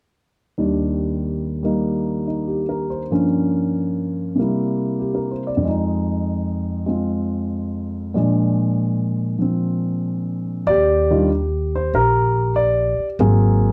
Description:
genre	jazz piano trio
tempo	95 BPM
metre	4/4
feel	swing 69% on 8ths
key	Eb major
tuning	A4 = 440 Hz
part	dark grand piano	melody	0.6-13.7 s	Eb2 to D5	-21 LUFS	equal	none
part	upright bass	bass	10.7-13.7 s	Ab1 to Eb2	-22 LUFS	equal	none
room	moderate studio reverb, RT60 0.7 s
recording	dark, warm production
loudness	-20 LUFS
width	mono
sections	0.6-10.7 A section; 10.7-13.7 B section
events	none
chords	0.6 Ebmaj7; 3.1 Gm7b5; 4.4 C7; 5.6 Fm7; 8.2 Bb7; 10.7 Ebmaj7; 13.2 Ab9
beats	| 0.57 1.21 1.84 2.47 | 3.10 3.73 4.36 5.00 | 5.63 6.26 6.89 7.52 | 8.15 8.78 9.41 10.04 | 10.68 11.31 11.94 12.57 | 13.20

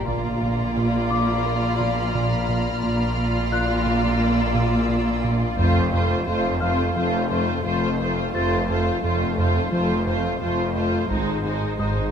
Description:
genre	cinematic, suspense film score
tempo	87 BPM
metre	4/4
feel	straight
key	unclear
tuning	A4 = 440 Hz
part	muted symphonic violin section	melody	0.0-12.1 s	C5 to D5	-31 LUFS	left 2 dB	none
part	muted symphonic violin section	second line	0.0-12.1 s	Eb4 to F4	-27 LUFS	left 1 dB	none
part	muted symphonic viola section	accompaniment	0.0-12.1 s	Ab3 to Bb3	-29 LUFS	equal	none
part	muted symphonic cello section	bass	0.0-12.1 s	F2 to Bb2	-28 LUFS	equal	none
part	muted symphonic double bass section	bass	0.0-12.1 s	F1 to Bb1	-28 LUFS	equal	none
part	organ-like drone	drone	0.0-12.1 s	Ab1 to F2	-33 LUFS	left 1 dB	none
part	celesta	texture	0.0-12.1 s	G4 to A6	-32 LUFS	left 5 dB	none
part	smooth synth bass	riff	0.1-12.0 s	F2 to Bb3	-26 LUFS	right 2 dB	none
part	taiko ensemble	drums	0.1-1.4, 5.6-6.9, 11.1-12.1 s	none	-33 LUFS	left 1 dB	none
part	muted symphonic violin section	texture	0.1-5.2 s	Bb5 to F6	-33 LUFS	left 2 dB	none
room	moderate stone room reverb, RT60 1.4 s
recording	none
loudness	-20 LUFS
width	side -8 dB against mid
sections	0.0-12.1 A section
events	none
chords	0.1 Bb; 5.6 F; 11.1 Ab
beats	| 0.07 0.76 1.45 2.14 | 2.83 3.52 4.21 4.89 | 5.58 6.27 6.96 7.65 | 8.34 9.03 9.72 10.41 | 11.10 11.79

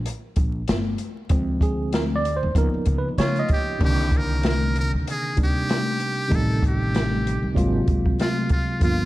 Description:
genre	hip hop, jazz-hop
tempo	96 BPM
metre	4/4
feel	swing 57% on 16ths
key	C minor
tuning	A4 = 440 Hz
part	upright bass	bass	0.0-9.1 s	G1 to Db3	-25 LUFS	equal	none
part	open jazz drum kit	drums	0.1-9.0 s	crash cymbal, hi-hat, kick drum, snare drum	-24 LUFS	equal	vintage 12-bit sampler grit
part	tine electric piano	accompaniment	1.3-9.1 s	C3 to Eb5	-25 LUFS	right 1 dB	fast stereo tremolo
part	trumpet with metal mute	melody	3.2-9.1 s	F4 to Bb4	-28 LUFS	equal	tape echo
room	light reverb, small room ambience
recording	dark, warm production, vinyl crackle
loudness	-20 LUFS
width	side -17 dB against mid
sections	0.0-3.8 A section; 3.8-9.1 B section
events	tine electric piano solo 0.0-3.8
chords	0.0 Gm; 1.3 Dm7b5; 2.6 Db13; 3.8 Cm9; 6.3 Am7b5; 7.6 Ab13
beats	0.06 0.69 | 1.31 1.94 2.56 3.19 | 3.81 4.43 5.06 5.68 | 6.31 6.93 7.56 8.19 | 8.81

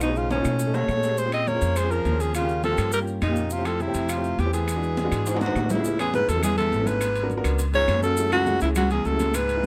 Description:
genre	Afro-Cuban jazz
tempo	206 BPM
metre	4/4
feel	straight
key	A major from 5.8 s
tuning	A4 = 440 Hz
part	clear alto saxophone	melody	0.0-9.7 s	C#4 to Eb5	-27 LUFS	equal	plate reverb
part	breathy baritone saxophone	second line	0.0-9.7 s	C#2 to C4	-33 LUFS	equal	none
part	upright bass	bass	0.0-9.7 s	G#1 to B2	-29 LUFS	equal	none
part	claves	percussion	0.0-9.5 s	none	-40 LUFS	equal	none
part	congas	percussion	0.0-9.7 s	none	-34 LUFS	equal	none
part	maracas	percussion	0.0-9.7 s	none	-41 LUFS	equal	none
part	timbales	percussion	0.0-9.6 s	none	-36 LUFS	equal	none
part	warm upright piano	accompaniment	0.1-9.7 s	G#3 to Bb4	-34 LUFS	equal	none
room	light reverb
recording	close, detailed microphones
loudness	-24 LUFS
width	mono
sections	0.0-5.8 A section; 5.8-9.7 B section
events	drum fill 0.0-1.2, 5.3-5.8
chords	0.0 B13; 1.2 Bbm9; 2.3 Eb9; 3.5 Fmaj9; 4.7 E7; 5.8 Amaj7; 7.0 G#m7b5; 7.6 C#7; 8.2 F#m9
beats	| 0.01 0.30 0.60 0.89 | 1.18 1.47 1.76 2.05 | 2.35 2.64 2.93 3.22 | 3.51 3.80 4.10 4.39 | 4.68 4.97 5.26 5.55 | 5.85 6.14 6.43 6.72 | 7.01 7.30 7.60 7.89 | 8.18 8.47 8.76 9.05 | 9.34 9.63

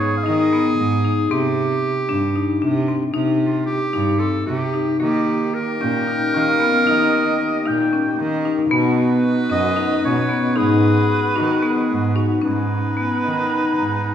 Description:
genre	contemporary instrumental, chamber music in an uneven meter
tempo	227 BPM (eighths)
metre	7/8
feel	straight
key	G# dorian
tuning	A4 = 441 Hz
part	warm oboe	melody	0.0-0.8, 5.8-14.1 s	B4 to G5	-24 LUFS	right 2 dB	none
part	bright clarinet	second line	0.0-14.1 s	D#4 to B4	-23 LUFS	equal	none
part	clear cello	bass	0.0-14.1 s	F#2 to D#3	-23 LUFS	right 3 dB	none
part	marimba with hard mallets	arpeggios	0.3-14.0 s	A#3 to A#5	-20 LUFS	left 3 dB	none
part	accordion	sustained chords	5.0-14.1 s	D#3 to B4	-30 LUFS	right 1 dB	light tremolo tuning
room	wet recital hall reverb, RT60 1.3 s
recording	heard from further back in the room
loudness	-16 LUFS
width	side -9 dB against mid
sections	0.0-12.4 A section; 12.4-14.1 B section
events	none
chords	0.0 G#m; 1.3 Cm; 5.0 D#; 8.7 B; 10.6 G#m7; 12.4 G#madd9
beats	0.00 0.26 0.52 0.79 1.05 | 1.31 1.57 1.83 2.09 2.35 2.62 2.88 | 3.14 3.41 3.67 3.94 4.20 4.47 4.74 | 5.01 5.27 5.54 5.81 6.07 6.34 6.60 | 6.87 7.13 7.40 7.66 7.92 8.19 8.45 | 8.71 8.97 9.24 9.50 9.77 10.03 10.30 | 10.56 10.83 11.09 11.36 11.62 11.89 12.15 | 12.42 12.69 12.96 13.22 13.49 13.76 14.02

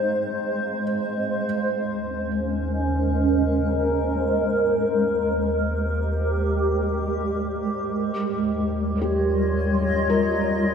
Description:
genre	ambient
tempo	free time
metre	none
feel	none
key	unclear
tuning	A4 = 440 Hz
part	granular cloud pad	sustained chords	0.0-10.7 s	G3 to F5	-22 LUFS	equal	built-in reverb, lush chorus
part	felt-muted upright piano	arpeggios	0.0-1.5, 9.0-10.7 s	G4 to Bb4	-29 LUFS	equal	analog chorus, analog delay
part	deep rumbling drone	bass	2.1-10.7 s	Eb2	-28 LUFS	equal	built-in reverb
room	wet lush hall reverb, RT60 2.9 s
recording	dreamy mix soaked in reverb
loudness	-21 LUFS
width	side -7 dB against mid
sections	0.0-1.4 A section; 1.4-10.7 B section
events	none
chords	0.0 Fm7; 1.4 Bbm9/Eb; 4.7 Abmaj9/Eb; 7.9 Eb9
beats	free time

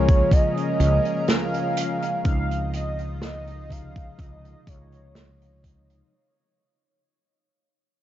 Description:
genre	vaporwave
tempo	62 BPM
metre	4/4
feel	straight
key	Db major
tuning	A4 = 438 Hz
part	warm velvety synth lead	melody	0.0-5.6 s	Db5 to F5	-27 LUFS	right 1 dB	chorus, tape echo
part	tine electric piano	accompaniment	0.0-6.1 s	C3 to F4	-28 LUFS	equal	medium stereo tremolo, wide subtle chorus, vintage 12-bit sampler grit
part	lush unison pad	sustained chords	0.0-6.1 s	Db3 to Eb5	-34 LUFS	equal	chorus
part	mellow fretless electric bass	bass	0.0-6.0 s	Db2	-25 LUFS	equal	none
part	electronic kick drum	drums	0.1-5.8 s	none	-20 LUFS	equal	none
part	unplugged drum kit	drums	0.1-6.1 s	hi-hat, snare drum	-28 LUFS	right 2 dB	none
room	light reverb, studio ambience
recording	dark, warm production, nothing above 7.5 kHz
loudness	-20 LUFS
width	side -12 dB against mid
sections	0.0-6.1 A section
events	fade-out 0.0-6.1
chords	0.0 Bbm7/Db; 2.3 Dbmaj9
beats	0.32 1.28 | 2.25 3.22 4.19 5.16

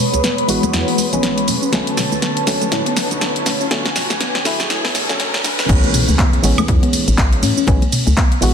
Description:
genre	deep house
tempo	121 BPM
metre	4/4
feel	swing 59% on 16ths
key	unclear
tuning	A4 = 440 Hz
part	airy breathy pad	sustained chords	0.0-5.7 s	D3 to B5	-24 LUFS	equal	chorus, phaser, vintage 12-bit sampler grit, sidechain pumping
part	soft round pluck	arpeggios	0.0-8.2 s	B2 to B4	-24 LUFS	left 2 dB	chorus, sidechain pumping, ping-pong delay
part	riser and impact	sound effects	1.1-7.7 s	none	-26 LUFS	equal	none
part	granular cloud pad	texture	0.0-5.7 s	D3 to C#5	-25 LUFS	left 1 dB	built-in reverb, sidechain pumping
part	woody FM bass	bass	0.1-8.5 s	A1 to B2	-19 LUFS	equal	sidechain pumping
part	house drum kit	drums	0.1-8.5 s	crash cymbal, handclaps, hi-hat, ride cymbal, shaker, snare drum, woodblock	-19 LUFS	right 1 dB	studio reverb
part	congas	percussion	0.1-8.3 s	none	-28 LUFS	left 3 dB	none
part	percussive organ stab	stabs	0.5-8.5 s	D3 to F#4	-23 LUFS	equal	chorus, cassette tape, sidechain pumping, ping-pong delay
part	electronic kick drum	drums	5.7-8.3 s	none	-15 LUFS	equal	overdrive, studio reverb
room	moderate echo chamber reverb, RT60 1.5 s, digital ambience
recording	dense, heavily limited modern master, high-pass filter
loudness	-14 LUFS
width	side -7 dB against mid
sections	0.0-5.7 A section; 5.7-8.5 B section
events	build-up 0.0-5.7; drum fill 0.0-5.7; filter sweep on synth stab 0.0-5.7; filter sweep on analog synth pad 0.0-5.7; filter sweep on synth arpeggio sound 0.0-5.7; filter sweep 0.0-5.7; riser 1.1-5.7; drop 5.7-8.5; impact 5.7-7.7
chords	0.0 Amaj9; 1.5 Bm9; 5.7 Amaj9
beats	0.24 0.73 1.23 | 1.73 2.22 2.72 3.21 | 3.71 4.21 4.70 5.20 | 5.69 6.19 6.68 7.18 | 7.68 8.17

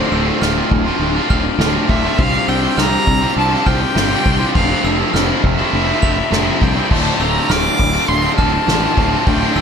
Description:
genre	post-rock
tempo	102 BPM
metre	4/4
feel	straight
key	D minor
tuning	A4 = 441 Hz
part	rich violin	melody	0.0-9.6 s	C5 to D6	-20 LUFS	equal	analog delay
part	distorted electric guitar	riff	0.0-9.6 s	D2 to C5	-21 LUFS	right 14 dB	overdrive
part	overdriven semi-hollow guitar	riff	0.0-9.6 s	D2 to C5	-21 LUFS	left 13 dB	none
part	glockenspiel with hard plastic mallets	arpeggios	0.1-9.6 s	E6 to F7	-27 LUFS	right 6 dB	analog delay
part	fuzz fingered electric bass	bass	0.1-9.6 s	D1 to C2	-20 LUFS	equal	overdrive
part	soft-mallet drum kit	drums	0.1-9.6 s	crash cymbal, kick drum, ride cymbal, snare drum	-18 LUFS	equal	none
room	small room ambience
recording	none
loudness	-13 LUFS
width	side -7 dB against mid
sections	0.0-9.6 A section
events	none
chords	0.0 Dm7; 2.2 C7sus4; 4.5 Fmaj7; 6.9 Dm7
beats	0.42 1.01 1.60 | 2.19 2.78 3.37 3.96 | 4.54 5.13 5.72 6.32 | 6.91 7.50 8.09 8.68 | 9.27

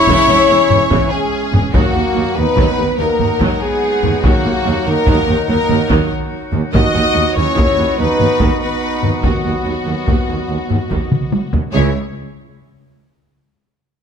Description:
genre	cinematic, epic orchestral film score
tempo	96 BPM (dotted quarters)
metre	12/8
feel	straight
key	C# dorian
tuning	A4 = 439 Hz
part	clear symphonic violin section	melody	0.0-12.0 s	F#4 to D#5	-23 LUFS	left 5 dB	none
part	mellow silver concert flute	second line	0.0-12.0 s	C#5 to D#6	-22 LUFS	left 2 dB	none
part	rich symphonic violin section	second line	0.0-12.0 s	F#4 to D#5	-25 LUFS	left 3 dB	none
part	clear woodwind section	sustained chords	0.0-11.9 s	F#3 to F#5	-27 LUFS	left 2 dB	none
part	mellow trombone section	sustained chords	0.0-11.9 s	C#3 to D#4	-25 LUFS	right 7 dB	none
part	warm French horn section	sustained chords	0.0-11.9 s	C#4 to D#5	-20 LUFS	left 4 dB	none
part	mellow trumpet section	stabs	0.0-11.9 s	A#3 to C#5	-23 LUFS	right 1 dB	none
part	rich symphonic viola section	accompaniment	0.1-12.0 s	C#3 to G#4	-26 LUFS	right 2 dB	none
part	clear chamber double bass section	bass	0.1-12.0 s	E1 to D#2	-23 LUFS	right 3 dB	none
part	mellow tuba	bass	0.1-11.9 s	E1 to D#2	-23 LUFS	right 4 dB	none
part	rich symphonic cello section	bass	0.1-12.0 s	C#2 to E2	-23 LUFS	right 2 dB	none
part	taiko ensemble	drums	0.1-11.7 s	none	-18 LUFS	equal	none
room	light reverb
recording	close, detailed microphones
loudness	-12 LUFS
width	side -7 dB against mid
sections	0.0-11.7 A section; 11.7-14.0 B section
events	drum fill 11.1-11.7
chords	0.0 C#m/E; 1.7 D#m; 6.7 B/D#; 11.7 C#m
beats	0.48 1.11 | 1.73 2.36 2.98 3.61 | 4.23 4.86 5.48 6.11 | 6.73 7.36 7.99 8.61 | 9.24 9.86 10.49 11.11 | 11.74

